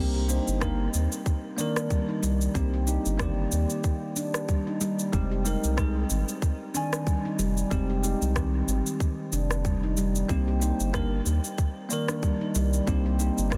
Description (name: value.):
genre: organic downtempo.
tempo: 93 BPM.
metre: 4/4.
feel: swing 56% on 16ths.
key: C minor.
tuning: A4 = 440 Hz.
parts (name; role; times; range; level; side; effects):
bell-like tine electric piano; accompaniment; 0.0-13.6 s; Eb3 to Ab5; -35 LUFS; equal; analog chorus, sidechain pumping, tape echo, shimmer reverb.
handpan; arpeggios; 0.0-13.4 s; G3 to G4; -33 LUFS; equal; tape echo, shimmer reverb.
round analog bass; bass; 0.0-13.6 s; F1 to Eb2; -29 LUFS; equal; tube saturation, sidechain pumping.
electronic cabasa and rim click; drums; 0.3-13.6 s; none; -37 LUFS; equal; none.
electronic kick drum; drums; 0.6-13.6 s; none; -29 LUFS; equal; none.
room: light reverb.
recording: dense, heavily limited modern master.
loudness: -27 LUFS.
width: mono.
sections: 0.0-13.6 A section.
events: none.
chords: 0.0 Cm7; 5.1 Fm9; 10.3 Cm7.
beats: 0.62 1.26 1.91 | 2.55 3.20 3.84 4.49 | 5.13 5.78 6.42 7.07 | 7.71 8.36 9.01 9.65 | 10.30 10.94 11.59 12.23 | 12.88 13.52.